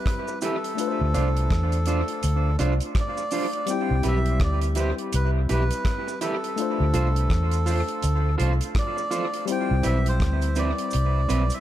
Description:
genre	lovers rock reggae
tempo	83 BPM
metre	4/4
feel	swing 61% on 16ths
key	C major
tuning	A4 = 438 Hz
part	melodica	melody	0.0-11.6 s	A4 to G5	-30 LUFS	right 1 dB	tape echo
part	barky tine electric piano	accompaniment	0.0-11.6 s	G3 to C5	-31 LUFS	moving between left 8 dB and left 1 dB	overdrive, auto-pan
part	damped 70s drum kit	drums	0.1-11.6 s	hi-hat, kick drum, rim click	-29 LUFS	equal	dub echo
part	electric guitar through a small old amp	stabs	0.3-11.4 s	C4 to C5	-30 LUFS	right 3 dB	dub echo
part	cabasa	percussion	0.3-11.6 s	none	-41 LUFS	right 4 dB	none
part	vintage muted fingered electric bass	bass	1.0-11.5 s	B1 to E2	-22 LUFS	equal	none
room	light reverb, studio reverb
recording	dark, warm production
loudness	-21 LUFS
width	side -12 dB against mid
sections	0.0-11.6 A section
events	none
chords	0.0 Cmaj7; 0.8 Dm7; 3.7 Cmaj7; 6.6 Dm7; 9.5 Cmaj7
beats	0.06 | 0.78 1.51 2.23 2.96 | 3.68 4.40 5.13 5.85 | 6.58 7.30 8.03 8.75 | 9.48 10.20 10.93

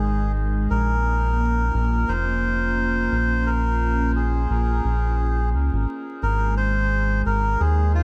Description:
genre	ambient dub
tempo	87 BPM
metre	4/4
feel	swing 56% on 16ths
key	Bb minor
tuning	A4 = 438 Hz
part	melodica	melody	0.0-8.0 s	F4 to C5	-28 LUFS	equal	dub echo
part	warbly tape-like pad	sustained chords	0.0-8.0 s	Ab3 to Eb5	-30 LUFS	equal	chorus, built-in reverb
part	round analog bass	bass	0.0-8.0 s	F1 to Eb2	-24 LUFS	equal	tube saturation
room	moderate spring reverb, RT60 1.2 s, small room ambience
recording	echo-heavy mix, vinyl crackle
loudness	-22 LUFS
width	mono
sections	0.0-6.2 A section; 6.2-8.0 B section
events	none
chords	0.0 Ab5; 0.7 Bbm9; 6.2 Ab6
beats	0.02 | 0.71 1.40 2.09 2.77 | 3.46 4.16 4.84 5.53 | 6.22 6.91 7.60

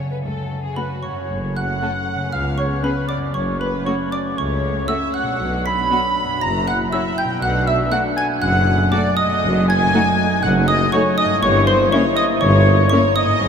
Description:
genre	cinematic, playful, whimsical film cue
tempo	119 BPM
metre	4/4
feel	straight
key	F# minor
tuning	A4 = 440 Hz
part	warm studio violin section	melody	0.0-13.0 s	E4 to B4	-35 LUFS	left 2 dB	none
part	xylophone with plastic mallets	melody	0.0-13.5 s	F#5 to B6	-26 LUFS	right 3 dB	none
part	warm studio violin section	second line	0.0-13.5 s	F#4 to B5	-26 LUFS	equal	none
part	rich studio viola section	accompaniment	0.0-13.0 s	A3 to E4	-27 LUFS	left 2 dB	none
part	concert harp	arpeggios	0.0-13.5 s	F#2 to E5	-29 LUFS	left 1 dB	none
part	clear studio cello section	bass	0.2-13.5 s	C#2 to B2	-24 LUFS	right 1 dB	none
part	flute section	second line	0.8-13.5 s	B4 to B5	-28 LUFS	right 2 dB	none
part	warm clarinet	second line	0.8-13.5 s	B4 to B5	-26 LUFS	right 4 dB	none
part	warm oboe	second line	0.8-13.5 s	B4 to B5	-24 LUFS	left 4 dB	none
part	clear French horn section	sustained chords	1.3-13.5 s	F#3 to E4	-27 LUFS	left 2 dB	none
part	dark tuba	bass	1.3-13.5 s	F#1 to C#2	-26 LUFS	equal	none
part	rich studio double bass section	bass	1.3-13.5 s	F#1 to C#2	-26 LUFS	equal	none
room	wet huge ambient reverb, RT60 7.2 s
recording	in a vast, echoing space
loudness	-16 LUFS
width	side -7 dB against mid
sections	0.0-1.3 A section; 1.3-13.5 B section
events	none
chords	0.0 F#m; 2.3 C#5; 3.3 F#m; 5.4 Bm; 6.4 F#5; 7.4 Bm7; 9.4 D#dim/F#; 11.4 Gdim7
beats	0.24 0.76 | 1.30 1.82 2.33 2.83 | 3.35 3.86 4.37 4.88 | 5.39 5.91 6.42 6.92 | 7.42 7.92 8.42 8.92 | 9.43 9.94 10.43 10.93 | 11.43 11.92 12.42 12.92 | 13.43

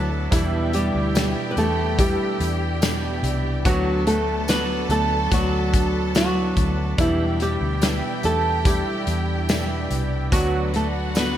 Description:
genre	pop ballad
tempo	72 BPM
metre	4/4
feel	straight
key	unclear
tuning	A4 = 439 Hz
part	flamenco guitar	melody	0.0-11.4 s	E3 to B4	-24 LUFS	equal	none
part	rich studio violin section	second line	0.0-11.4 s	F#4 to A5	-32 LUFS	left 1 dB	none
part	warm baby grand piano	accompaniment	0.0-11.4 s	B2 to G4	-28 LUFS	right 3 dB	analog chorus
part	hand-pumped harmonium	sustained chords	0.0-11.4 s	F#4 to B5	-35 LUFS	right 1 dB	none
part	fingerpicked steel-string acoustic guitar	arpeggios	0.0-11.4 s	E2 to F#4	-33 LUFS	left 2 dB	none
part	vintage muted fingered electric bass	bass	0.0-11.4 s	C2 to E2	-25 LUFS	equal	none
part	loose indie drum kit	drums	0.3-11.4 s	hi-hat, kick drum, snare drum	-24 LUFS	left 1 dB	gated reverb
part	tambourine	percussion	1.2-11.3 s	none	-38 LUFS	right 4 dB	none
room	moderate lush hall reverb, RT60 2.9 s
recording	bright 1980s-style digital production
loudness	-19 LUFS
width	side -11 dB against mid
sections	0.0-11.4 A section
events	none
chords	0.3 Em7; 3.7 Bm/D; 7.0 Em7; 10.3 Bm/D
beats	| 0.32 1.16 1.99 2.82 | 3.65 4.49 5.32 6.16 | 6.99 7.82 8.65 9.49 | 10.32 11.15

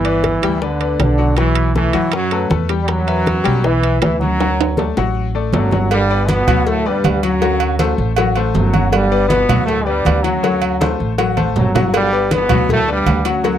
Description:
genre	latin, salsa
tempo	159 BPM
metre	4/4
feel	straight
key	G major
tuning	A4 = 442 Hz
part	bright trombone section	melody	0.0-13.6 s	F#2 to E4	-18 LUFS	right 2 dB	none
part	bright concert grand piano	accompaniment	0.0-13.6 s	F#3 to G5	-20 LUFS	left 10 dB	none
part	upright bass	bass	0.0-13.6 s	G1 to F#2	-19 LUFS	right 1 dB	none
part	congas	percussion	0.0-13.6 s	none	-21 LUFS	right 1 dB	none
part	timbales and agogo bells	percussion	0.0-13.6 s	none	-23 LUFS	right 13 dB	none
part	bongos and cowbell	percussion	0.2-13.6 s	none	-23 LUFS	left 4 dB	none
room	little or no reverb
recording	dry, close 1970s-style studio recording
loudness	-13 LUFS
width	side -10 dB against mid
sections	0.0-5.9 A section; 5.9-13.6 B section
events	drum fill 4.4-5.9, 11.4-11.9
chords	0.0 G; 1.4 B5; 2.9 Emadd9; 4.4 D; 5.9 Gmaj7; 7.4 D7; 8.9 Gmaj7; 10.4 D7; 11.9 Gmaj7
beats	0.23 0.61 0.99 | 1.37 1.75 2.13 2.51 | 2.88 3.26 3.64 4.02 | 4.40 4.78 5.15 5.53 | 5.91 6.29 6.67 7.04 | 7.42 7.80 8.18 8.55 | 8.93 9.31 9.68 10.06 | 10.44 10.81 11.19 11.57 | 11.94 12.32 12.70 13.07 | 13.45

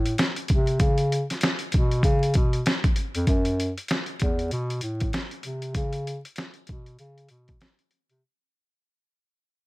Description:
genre	hip hop, boom-bap hip-hop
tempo	97 BPM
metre	4/4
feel	swing 61% on 16ths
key	unclear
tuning	A4 = 441 Hz
part	mellow bass clarinet	bass	0.0-8.2 s	E2 to C#3	-25 LUFS	equal	none
part	boom bap sampler-style drum kit	drums	0.1-8.2 s	hi-hat, kick drum, snare drum	-24 LUFS	equal	overdrive
room	little or no reverb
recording	vinyl crackle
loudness	-22 LUFS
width	side -20 dB against mid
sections	0.0-3.3 A section; 3.3-8.2 B section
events	fade-out 3.3-8.2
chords	none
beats	0.18 | 0.80 1.42 2.04 2.66 | 3.28 3.90 4.51 5.13 | 5.75 6.37 6.99 7.61

